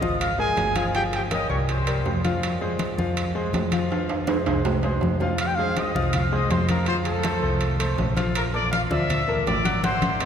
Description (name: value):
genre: latin, salsa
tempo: 162 BPM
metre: 4/4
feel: straight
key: F minor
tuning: A4 = 441 Hz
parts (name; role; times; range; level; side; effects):
- warm trumpet section; melody; 0.0-2.2, 5.4-10.3 s; G4 to E6; -27 LUFS; equal; none
- bright grand piano; accompaniment; 0.0-10.3 s; F3 to Gb5; -28 LUFS; left 2 dB; none
- hollow-body short-scale fingered electric bass; bass; 0.0-10.3 s; G1 to F2; -26 LUFS; equal; none
- congas; percussion; 0.0-10.1 s; none; -30 LUFS; left 2 dB; none
- timbales; percussion; 0.2-10.3 s; none; -30 LUFS; right 4 dB; none
room: wet cathedral reverb, RT60 6.1 s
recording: recorded in a church or concert hall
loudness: -21 LUFS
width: side -8 dB against mid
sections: 0.0-5.4 A section; 5.4-10.3 A section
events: drum fill 3.9-5.4, 9.8-10.3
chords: 0.0 Db69 (rootless); 0.9 Gm7b5; 1.7 C5; 2.4 Fm; 6.9 F; 8.4 Bbmaj7